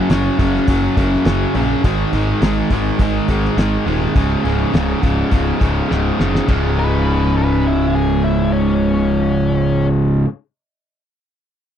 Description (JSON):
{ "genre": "classic rock", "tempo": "103 BPM", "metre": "4/4", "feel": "straight", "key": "Db major", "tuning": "A4 = 440 Hz", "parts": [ { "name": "cranked stack guitar", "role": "riff", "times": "0.0-10.3 s", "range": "Db2 to F4", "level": "-19 LUFS", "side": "right 9 dB", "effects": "overdrive" }, { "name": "distorted electric guitar", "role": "riff", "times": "0.0-10.3 s", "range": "Db2 to Ab3", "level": "-19 LUFS", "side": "left 10 dB", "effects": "distortion" }, { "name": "fuzz picked electric bass", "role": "bass", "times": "0.1-10.2 s", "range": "Db1 to Bb1", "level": "-20 LUFS", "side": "equal", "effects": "overdrive" }, { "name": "cloth-damped thuddy drum kit", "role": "drums", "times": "0.1-6.6 s", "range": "crash cymbal, hi-hat, kick drum, snare drum", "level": "-17 LUFS", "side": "equal", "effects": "none" }, { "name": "octave-fuzz lead guitar", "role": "second line", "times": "6.8-9.9 s", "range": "Db4 to Cb5", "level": "-23 LUFS", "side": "left 4 dB", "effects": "distortion" } ], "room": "little or no reverb", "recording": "dry, close 1970s-style studio recording", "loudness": "-14 LUFS", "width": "side -9 dB against mid", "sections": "0.0-6.5 A section; 6.5-8.8 B section", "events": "drum fill 5.9-6.5", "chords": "0.0 Gb5; 1.8 Ab5; 4.2 Db5; 6.5 Db" }